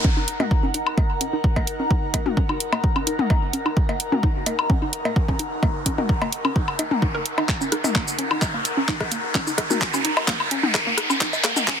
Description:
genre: minimal techno.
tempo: 129 BPM.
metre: 4/4.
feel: straight.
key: Eb minor.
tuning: A4 = 440 Hz.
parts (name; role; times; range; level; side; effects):
hollow square pluck; riff; 0.0-11.7 s; Bb3 to Bb4; -28 LUFS; right 1 dB; chorus, sidechain pumping, ping-pong delay.
electronic kick drum; drums; 0.0-11.8 s; none; -22 LUFS; equal; overdrive.
riser; sound effects; 0.0-11.8 s; none; -28 LUFS; right 1 dB; none.
airy breathy pad; texture; 0.0-11.8 s; Eb4 to Bb5; -29 LUFS; left 1 dB; chorus, phaser, sidechain pumping.
garage drum kit; drums; 0.3-11.8 s; cabasa, handclaps, hi-hat; -24 LUFS; equal; low-pass filter on hats, soft clipping on snare, low-pass filter on snare, low-pass filter on perc.
filtered dub chord stab; stabs; 0.4-11.6 s; Eb4 to Bb4; -30 LUFS; left 5 dB; phaser, digital delay.
organic electronic drum kit; percussion; 0.4-11.7 s; cowbell, rim click, toms, woodblock; -25 LUFS; left 3 dB; overdrive, digital delay.
room: light reverb.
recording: dense, heavily limited modern master, high-pass filter.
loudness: -20 LUFS.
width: side -8 dB against mid.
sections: 0.0-11.8 A section.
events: build-up 0.0-11.8; riser 0.0-11.8; filter sweep on synth arpeggio sound 0.0-11.8; filter sweep 0.0-11.8; drum fill 7.5-11.8.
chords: 0.0 Ebm.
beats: | 0.05 0.51 0.98 1.44 | 1.91 2.37 2.84 3.30 | 3.77 4.23 4.70 5.16 | 5.63 6.09 6.56 7.02 | 7.49 7.95 8.42 8.88 | 9.35 9.81 10.28 10.74 | 11.21 11.67.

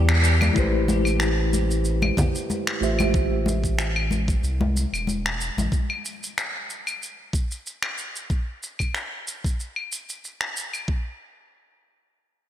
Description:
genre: sunset chillout.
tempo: 93 BPM.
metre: 4/4.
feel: swing 54% on 16ths.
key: unclear.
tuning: A4 = 438 Hz.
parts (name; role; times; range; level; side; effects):
mellow tine electric piano; accompaniment; 0.0-3.5 s; E3 to E5; -26 LUFS; moving between left 4 dB and right 6 dB; medium stereo tremolo, auto-pan, low-pass filter, ping-pong delay.
round analog bass; bass; 0.0-5.7 s; E1 to E2; -23 LUFS; equal; none.
finger snaps, shaker and claves; drums; 0.1-10.9 s; none; -28 LUFS; left 1 dB; none.
congas; percussion; 0.4-5.7 s; none; -29 LUFS; left 3 dB; none.
electronic kick drum; drums; 0.6-11.0 s; none; -24 LUFS; equal; none.
room: moderate lush hall reverb, RT60 2.5 s.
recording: bright 1980s-style digital production.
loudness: -22 LUFS.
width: side -11 dB against mid.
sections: 0.6-10.9 A section; 10.9-12.5 B section.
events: break 0.0-0.6; band accent 0.1-0.4; filter sweep on tine electric piano 0.6-3.1.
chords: 0.0 Em7; 0.6 Am7; 2.8 Fmaj9/A; 5.7 N.C..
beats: | 0.56 1.21 1.85 2.50 | 3.14 3.79 4.43 5.08 | 5.72 6.37 7.01 7.66 | 8.30 8.95 9.59 10.24 | 10.88.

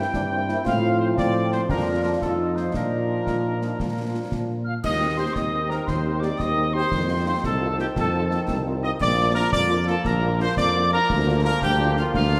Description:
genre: military-style march for wind band.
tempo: 115 BPM (dotted quarters).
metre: 6/8.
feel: straight.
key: Bb major.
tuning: A4 = 440 Hz.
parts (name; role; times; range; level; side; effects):
warm trumpet section; melody; 0.0-12.4 s; F4 to G5; -29 LUFS; equal; none.
clear euphonium; second line; 0.0-4.5 s; C4 to F4; -32 LUFS; equal; none.
warm French horn section; accompaniment; 0.0-12.4 s; F3 to G4; -32 LUFS; equal; none.
clear trombone section; sustained chords; 0.0-12.4 s; Eb3 to Eb4; -33 LUFS; equal; none.
warm tuba; bass; 0.0-12.4 s; Bb1 to Bb2; -28 LUFS; equal; none.
concert snare drum, concert bass drum and clash cymbals; drums; 0.1-12.4 s; none; -33 LUFS; equal; none.
piccolo; second line; 4.6-12.4 s; F5 to F6; -30 LUFS; equal; none.
room: wet scoring stage reverb, RT60 1.8 s.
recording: none.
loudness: -23 LUFS.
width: mono.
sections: 0.0-4.8 A section; 4.8-12.4 B section.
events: none.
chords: 0.0 C7/G; 0.7 F/A; 1.7 Bb/F; 2.2 F7; 2.8 Bb; 4.8 Cm/Eb; 6.9 F7; 9.0 Bb; 11.1 Bb/D.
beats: 0.14 | 0.66 1.19 | 1.71 2.23 | 2.75 3.27 | 3.79 4.31 | 4.84 5.36 | 5.88 6.40 | 6.92 7.44 | 7.96 8.49 | 9.01 9.53 | 10.05 10.57 | 11.09 11.62 | 12.14.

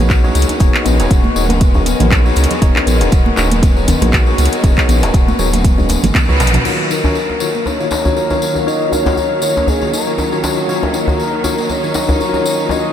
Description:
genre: afro house.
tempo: 119 BPM.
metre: 4/4.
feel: swing 56% on 16ths.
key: Eb minor.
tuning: A4 = 439 Hz.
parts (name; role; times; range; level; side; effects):
clear symphonic string section; sustained chords; 0.0-12.9 s; D#3 to F5; -23 LUFS; equal; sidechain pumping, low-pass filter.
bright tine electric piano; stabs; 0.0-12.9 s; Eb3 to Db5; -21 LUFS; left 2 dB; medium stereo tremolo, vintage 12-bit sampler grit, sidechain pumping, ping-pong delay.
round analog bass; bass; 0.0-6.6 s; D#1 to Db2; -16 LUFS; equal; sidechain pumping.
handpan; arpeggios; 0.1-12.8 s; F#3 to B4; -21 LUFS; left 3 dB; sidechain pumping, low-pass filter, ping-pong delay.
afro-pop drum kit; drums; 0.1-6.8 s; crash cymbal, handclaps, hi-hat, toms; -20 LUFS; equal; none.
electronic kick drum; drums; 0.1-6.3 s; none; -12 LUFS; equal; none.
tambourine; percussion; 0.1-12.8 s; none; -26 LUFS; left 4 dB; none.
djembe; percussion; 0.2-12.8 s; none; -22 LUFS; left 1 dB; none.
congas; percussion; 1.2-6.6 s; none; -23 LUFS; right 4 dB; none.
expressive synth lead; melody; 6.9-12.9 s; Ab4 to Eb5; -20 LUFS; equal; chorus, ping-pong delay.
room: moderate huge ambient reverb, RT60 7.2 s.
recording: dreamy mix soaked in reverb.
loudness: -11 LUFS.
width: side -10 dB against mid.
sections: 0.0-6.7 A section; 6.7-12.9 B section.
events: drum fill 5.6-6.7; band accent 6.1; filter sweep on handpan 6.7-12.9; filter sweep on string section 6.7-12.9.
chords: 0.0 B6/D#; 6.7 Ebm7.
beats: 0.10 | 0.60 1.11 1.61 2.12 | 2.62 3.12 3.63 4.13 | 4.64 5.14 5.64 6.15 | 6.65 7.16 7.66 8.16 | 8.67 9.17 9.68 10.18 | 10.69 11.19 11.69 12.20 | 12.70.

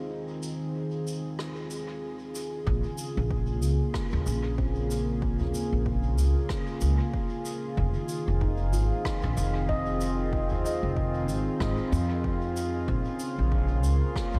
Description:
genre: ambient dub.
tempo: 94 BPM.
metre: 4/4.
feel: swing 58% on 16ths.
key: unclear.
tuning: A4 = 440 Hz.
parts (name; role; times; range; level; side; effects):
warm analog pad; sustained chords; 0.0-14.4 s; Db3 to Ab4; -34 LUFS; equal; chorus.
handpan; arpeggios; 0.0-14.4 s; C4 to Eb5; -41 LUFS; equal; diffuse ambient delay.
soft-mallet drum kit; drums; 0.4-14.3 s; cabasa, rim click, toms; -43 LUFS; equal; dub echo.
upright bass; bass; 2.7-14.4 s; F1 to F2; -29 LUFS; equal; none.
electronic kick drum; drums; 2.7-14.3 s; none; -34 LUFS; equal; none.
room: light reverb, small room reverb.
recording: low-pass filter.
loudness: -28 LUFS.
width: mono.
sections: 0.0-2.7 A section; 2.7-14.4 B section.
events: filter sweep on analog synth pad 0.0-2.7.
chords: 0.0 Fm7; 2.7 Bbm7; 7.8 Fm7; 12.9 Bbm7.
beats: | 0.11 0.75 1.39 2.03 | 2.67 3.31 3.94 4.58 | 5.22 5.86 6.50 7.13 | 7.77 8.41 9.05 9.69 | 10.33 10.96 11.60 12.24 | 12.88 13.52 14.16.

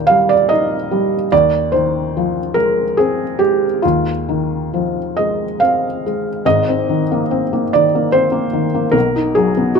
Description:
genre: neoclassical minimalist piano.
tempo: 71 BPM.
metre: 3/4.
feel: uneven beats, rubato.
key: unclear.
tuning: A4 = 440 Hz.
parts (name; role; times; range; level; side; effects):
felt-muted upright piano; solo; 0.0-9.8 s; Ab1 to G5; -14 LUFS; equal; none.
room: light reverb.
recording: dark, warm production.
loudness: -14 LUFS.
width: side -5 dB against mid.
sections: 0.0-6.4 A section; 6.4-9.8 B section.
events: none.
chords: 0.0 Eb; 1.3 Fm7/Eb; 6.4 Abadd9; 8.9 B.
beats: 0.50 | 1.32 2.15 2.98 | 3.83 4.71 5.59 | 6.45 7.29 8.12 | 8.95 9.78.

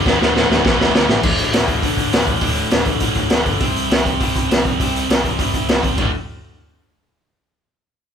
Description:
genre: punk rock.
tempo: 202 BPM.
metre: 4/4.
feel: straight.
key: unclear.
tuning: A4 = 441 Hz.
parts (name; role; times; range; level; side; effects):
cranked stack guitar; riff; 0.0-6.1 s; D2 to C4; -22 LUFS; right 10 dB; overdrive.
raw garage guitar; riff; 0.0-6.1 s; D2 to F#4; -22 LUFS; left 6 dB; overdrive.
scooped high-gain guitar; riff; 0.0-1.2 s; D2 to D3; -24 LUFS; equal; distortion.
overdriven picked electric bass; bass; 0.1-6.1 s; D1 to D2; -26 LUFS; equal; none.
raw garage drum kit; drums; 0.1-6.0 s; crash cymbal, hi-hat, kick drum, snare drum; -17 LUFS; equal; none.
room: little or no reverb.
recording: band playing live in one room.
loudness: -14 LUFS.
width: side -7 dB against mid.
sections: 0.0-1.2 A section; 1.2-6.0 B section; 6.0-7.2 C section.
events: drum fill 0.1-1.2.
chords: 0.1 D5; 3.6 C5; 6.0 D5.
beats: | 0.06 0.35 0.65 0.94 | 1.24 1.53 1.83 2.12 | 2.42 2.71 3.01 3.31 | 3.60 3.90 4.20 4.49 | 4.79 5.09 5.38 5.68 | 5.98.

